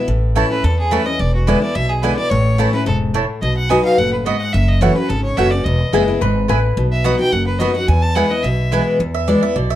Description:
bluegrass; 215 BPM; 4/4; straight; E major; A4 = 440 Hz
picked steel-string acoustic guitar; accompaniment; 0.0-9.8 s; E2 to F#4; -18 LUFS; left 2 dB
upright bass; bass; 0.1-9.8 s; E1 to E2; -18 LUFS; equal
mandolin; stabs; 0.4-9.8 s; A3 to B5; -22 LUFS; right 6 dB
clear fiddle; melody; 0.5-8.9 s; F#4 to A5; -22 LUFS; equal
lap resonator guitar; second line; 5.9-6.8 s; G#4 to B4; -20 LUFS; left 6 dB
moderate studio reverb, RT60 0.7 s; dark, warm production; -14 LUFS; side -12 dB against mid
0.1-9.0 A section
0.1 A; 1.2 E7; 2.3 A; 3.4 B; 4.5 F#m7; 5.7 E; 6.8 B; 7.9 E
| 0.08 0.36 0.64 0.92 | 1.20 1.48 1.75 2.03 | 2.31 2.59 2.87 3.15 | 3.43 3.70 3.98 4.26 | 4.54 4.82 5.10 5.38 | 5.66 5.93 6.21 6.49 | 6.77 7.05 7.33 7.61 | 7.88 8.16 8.44 8.72 | 9.00 9.28 9.56

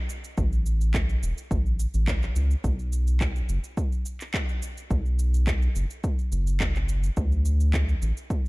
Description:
organic downtempo; 106 BPM; 4/4; straight; B minor; A4 = 440 Hz
electronic cabasa and handclaps; drums; 0.1-8.5 s; -35 LUFS; right 1 dB; overdrive, small room ambience
round analog bass; bass; 0.4-8.1 s; E1 to D2; -23 LUFS; equal; sidechain pumping
electronic kick drum; drums; 0.4-8.4 s; -28 LUFS; equal; overdrive, small room ambience
little or no reverb; dark, warm production; -23 LUFS; side -24 dB against mid
0.0-8.5 A section
| 0.38 0.94 1.51 2.08 | 2.64 3.21 3.77 4.34 | 4.91 5.47 6.04 6.61 | 7.17 7.74 8.30

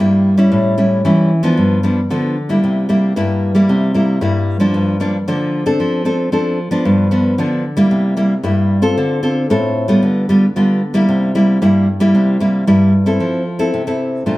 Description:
samba; 114 BPM; 4/4; straight; A4 = 440 Hz
nylon-string guitar; solo; 0.0-14.4 s; G2 to A4; -12 LUFS; equal
wet studio reverb, RT60 0.7 s; heard from further back in the room; -12 LUFS; side -18 dB against mid
0.0-13.2 A section; 13.2-14.4 B section
0.0 C7 (rootless); 0.5 A7; 1.6 G7; 2.6 C7; 4.7 Gm7; 5.8 Dm7/F; 6.9 G7; 7.9 C7; 9.0 Dm7; 10.0 G7/D; 11.1 C7; 13.2 Fmaj7
| 0.52 1.05 1.58 2.11 | 2.63 3.16 3.69 4.22 | 4.75 5.28 5.80 6.33 | 6.86 7.39 7.92 8.44 | 8.97 9.50 10.03 10.56 | 11.09 11.61 12.14 12.67 | 13.20 13.73 14.26

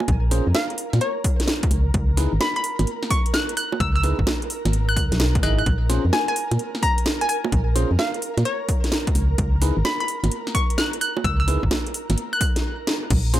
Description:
UK garage, two-step garage; 129 BPM; 4/4; swing 66% on 16ths; A4 = 441 Hz
ethereal airy pad; sustained chords; 0.0-13.4 s; Ab4 to Bb5; -34 LUFS; right 4 dB; ensemble chorus, built-in reverb, sidechain pumping
house drum kit; drums; 0.0-13.4 s; bongos, crash cymbal, hi-hat, snare drum; -26 LUFS; right 1 dB; overdrive
organ-like FM bass; bass; 0.1-13.4 s; Ab1 to Bb2; -20 LUFS; equal
electronic kick drum; drums; 0.1-13.2 s; -23 LUFS; equal; overdrive
bell-like tine electric piano; stabs; 0.3-13.4 s; Db4 to Eb5; -29 LUFS; equal; phaser, tape echo
hollow square pluck; melody; 0.5-12.5 s; Db5 to Gb6; -26 LUFS; left 1 dB; chorus, tape echo
light reverb; -19 LUFS; side -13 dB against mid
0.0-13.1 A section
break 12.6-13.1; drum fill 12.9; band accent 12.9
0.0 Bbm; 1.9 Dbm7; 5.7 Bbm; 9.4 Db5
| 0.08 0.55 1.01 1.48 | 1.94 2.41 2.87 3.34 | 3.80 4.27 4.73 5.20 | 5.66 6.13 6.59 7.06 | 7.52 7.99 8.45 8.92 | 9.38 9.85 10.31 10.78 | 11.24 11.71 12.18 12.64 | 13.11

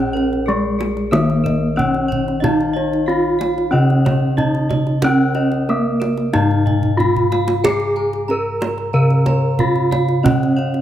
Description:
Javanese gamelan; 92 BPM; 4/4; straight; Bb slendro; A4 = 440 Hz
gamelan-type bronze metallophone; melody; 0.0-10.8 s; Ab3-25c to Bb4; -19 LUFS; equal
gamelan-type bossed gongs; arpeggios; 0.0-10.8 s; Ab4-25c to Bb5; -26 LUFS; left 5 dB
gamelan-type bronze metallophone; arpeggios; 0.0-10.8 s; Ab4-25c to Bb5; -28 LUFS; right 6 dB
gamelan-type bossed gongs; bass; 0.0-10.8 s; Bb1 to Ab4-25c; -18 LUFS; equal
kendang; percussion; 0.0-10.8 s; -24 LUFS; right 3 dB
light reverb; close, detailed microphones; -15 LUFS; side -11 dB against mid
0.0-10.8 A section
drum fill 6.8-7.6
0.47 1.13 1.78 | 2.43 3.08 3.73 4.39 | 5.04 5.69 6.34 6.99 | 7.65 8.30 8.95 9.60 | 10.25

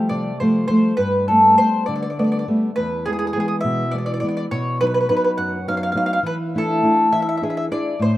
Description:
italian folk, Italian serenade; 68 BPM (dotted quarters); 6/8; straight; A4 = 440 Hz
mandolin; melody; 0.0-8.2 s; G#4 to F#5; -19 LUFS; equal
nylon-string guitar; accompaniment; 0.0-8.2 s; E2 to G#4; -20 LUFS; equal
moderate plate reverb, RT60 3.4 s; rough home demo mix; -17 LUFS; side -15 dB against mid
0.0-8.2 A section
0.0 Fadd9; 1.0 Gadd9; 2.7 E; 4.5 B; 6.3 E7sus4; 7.1 E7
0.11 | 0.99 1.86 | 2.74 3.63 | 4.50 5.38 | 6.25 7.12 | 8.00

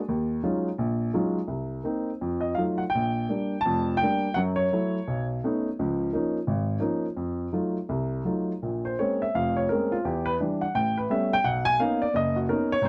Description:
solo jazz; 170 BPM; 4/4; swing 64% on 8ths, rubato; A4 = 439 Hz
warm upright piano; solo; 0.1-12.9 s; F1 to A5; -27 LUFS; equal
light reverb; dark, warm production; -27 LUFS; mono
0.0-8.6 A section; 8.6-12.9 B section
upright piano solo 8.6-12.9
0.1 Ebm11; 1.5 Cm7; 2.2 F7b9; 2.9 Bb6; 4.4 Gbm7; 5.1 B9; 5.8 Db69; 7.2 F7b9; 8.6 Bbm9; 10.1 Em7; 10.8 A9; 11.4 Bmaj9
| 0.10 0.45 0.79 1.14 | 1.49 1.85 2.21 2.57 | 2.93 3.29 3.65 4.01 | 4.37 4.73 5.08 5.43 | 5.78 6.12 6.47 6.82 | 7.17 7.52 7.87 8.25 | 8.62 8.99 9.35 9.70 | 10.05 10.40 10.76 11.11 | 11.45 11.79 12.13 12.48 | 12.83

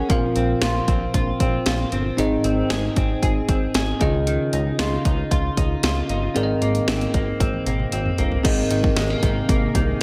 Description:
1980s-style pop; 115 BPM; 4/4; straight; A4 = 440 Hz
bell-like tine electric piano; accompaniment; 0.0-10.0 s; Ab2 to Gb5; -26 LUFS; equal
direct-recorded clean electric guitar; riff; 0.0-10.0 s; Eb3 to Ab4; -30 LUFS; equal; lush chorus, delay
chorused synth bass; bass; 0.0-9.9 s; G1 to Db2; -28 LUFS; equal
house drum kit; drums; 0.1-10.0 s; crash cymbal, hi-hat, kick drum, snare drum, toms; -25 LUFS; equal; gated reverb
soft string machine; sustained chords; 9.2-10.0 s; C3 to Ab4; -31 LUFS; equal; ensemble chorus
light reverb; -21 LUFS; mono
0.0-8.4 A section; 8.4-10.0 B section
drum fill 7.4-8.4
0.1 Bbsus2; 2.2 Ab; 4.0 Dbadd9; 6.4 Abadd9
| 0.10 0.62 1.14 1.66 | 2.19 2.71 3.23 3.75 | 4.27 4.79 5.32 5.84 | 6.36 6.88 7.40 7.92 | 8.45 8.97 9.49 10.01

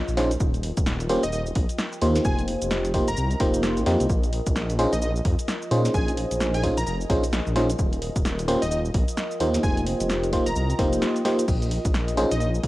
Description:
UK garage, two-step garage; 130 BPM; 4/4; swing 60% on 16ths; Bb dorian; A4 = 441 Hz
dark detuned saw bass; bass; 0.0-12.7 s; Eb1 to Bb2; -26 LUFS; equal
deep dark ambient pad; texture; 0.0-12.7 s; F4 to Ab5; -34 LUFS; left 1 dB; chorus, built-in reverb, sidechain pumping, cassette tape
punchy analog drum machine; drums; 0.1-12.7 s; crash cymbal, hi-hat, shaker, snare drum; -31 LUFS; equal; cassette tape
FM electric piano; stabs; 0.2-12.3 s; Bb3 to C5; -25 LUFS; equal; chorus, cassette tape, analog delay
electronic kick drum; drums; 0.4-12.7 s; -25 LUFS; equal; cassette tape
plucky unison lead; melody; 1.2-12.5 s; Eb5 to Bb5; -32 LUFS; equal; cassette tape, analog delay
light reverb; home recording on cassette; -21 LUFS; side -17 dB against mid
0.0-12.7 A section
0.4 Eb69; 2.2 F7sus4; 4.1 Bbm11; 7.8 Eb69; 9.6 F7sus4; 11.5 Bb7sus4
| 0.40 0.86 1.33 1.79 | 2.25 2.71 3.17 3.63 | 4.10 4.56 5.02 5.48 | 5.94 6.40 6.87 7.33 | 7.79 8.25 8.71 9.17 | 9.63 10.10 10.56 11.02 | 11.48 11.94 12.40

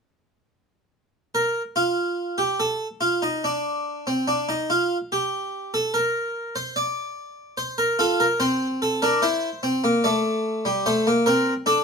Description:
classical, baroque-style 4-part fugue for harpsichord; 73 BPM; 4/4; straight; A4 = 440 Hz
harpsichord; solo; 1.3-11.8 s; G3 to D5; -21 LUFS; equal
moderate studio reverb, RT60 0.6 s; minimal, uncompressed stereo recording; -21 LUFS; side -5 dB against mid
0.9-11.8 A section
0.9 N.C.; 7.6 F; 9.2 C7; 10.9 F/A (rootless)
| 0.93 1.76 2.60 3.44 | 4.28 5.12 5.95 6.77 | 7.59 8.41 9.23 10.05 | 10.87 11.69

